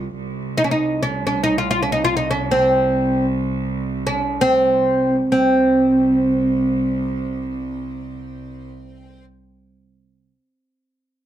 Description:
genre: Arabic maqam ensemble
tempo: free time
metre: none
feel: none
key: unclear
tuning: A4 = 440 Hz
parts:
  - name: oud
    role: melody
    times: 0.0-9.2 s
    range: C4 to F4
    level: -17 LUFS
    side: equal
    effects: none
  - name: clear studio cello section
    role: drone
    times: 0.0-8.7 s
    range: C2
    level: -26 LUFS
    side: right 2 dB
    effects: none
room: light reverb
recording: close, detailed microphones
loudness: -16 LUFS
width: side -11 dB against mid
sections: 0.0-5.3 A section; 5.3-7.9 B section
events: none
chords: none

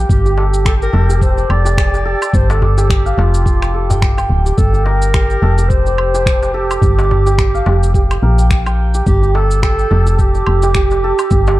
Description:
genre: organic downtempo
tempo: 107 BPM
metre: 4/4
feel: swing 57% on 16ths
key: unclear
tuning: A4 = 439 Hz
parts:
  - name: santur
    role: arpeggios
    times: 0.0-11.6 s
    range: G4 to G5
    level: -20 LUFS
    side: right 1 dB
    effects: tape echo
  - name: woody FM bass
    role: bass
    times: 0.0-11.6 s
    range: D1 to Bb1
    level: -14 LUFS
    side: equal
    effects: none
  - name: mellow clarinet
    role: melody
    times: 0.1-11.6 s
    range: F4 to D5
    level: -19 LUFS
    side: right 2 dB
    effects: tape echo
  - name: electronic kick drum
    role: drums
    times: 0.1-11.4 s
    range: none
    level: -15 LUFS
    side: equal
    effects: none
  - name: electronic shaker, finger snaps and woodblock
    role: drums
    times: 0.1-11.6 s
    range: none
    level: -25 LUFS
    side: equal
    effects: overdrive
  - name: darbuka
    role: percussion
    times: 0.4-11.6 s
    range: none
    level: -21 LUFS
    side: left 1 dB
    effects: none
room: light reverb, small room reverb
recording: dark, warm production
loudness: -11 LUFS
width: side -17 dB against mid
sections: 0.0-11.6 A section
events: none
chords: 0.1 Fadd9; 4.6 Gm

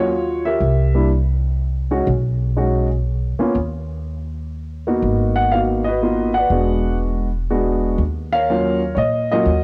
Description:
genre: jazz piano trio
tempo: 122 BPM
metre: 3/4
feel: swing 67% on 8ths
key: Eb minor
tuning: A4 = 440 Hz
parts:
  - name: dark grand piano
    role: melody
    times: 0.0-9.6 s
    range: Gb3 to Gb5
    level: -21 LUFS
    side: equal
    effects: cassette tape
  - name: upright bass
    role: bass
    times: 0.0-9.6 s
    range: E1 to Bb2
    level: -23 LUFS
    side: equal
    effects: none
room: light reverb, studio reverb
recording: home recording on cassette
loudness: -19 LUFS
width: mono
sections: 0.0-9.6 A section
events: none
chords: 0.0 Ebm9; 0.6 C7; 2.1 B69; 3.6 Eb5; 5.0 Abm7; 6.5 E9; 8.0 Ebm9

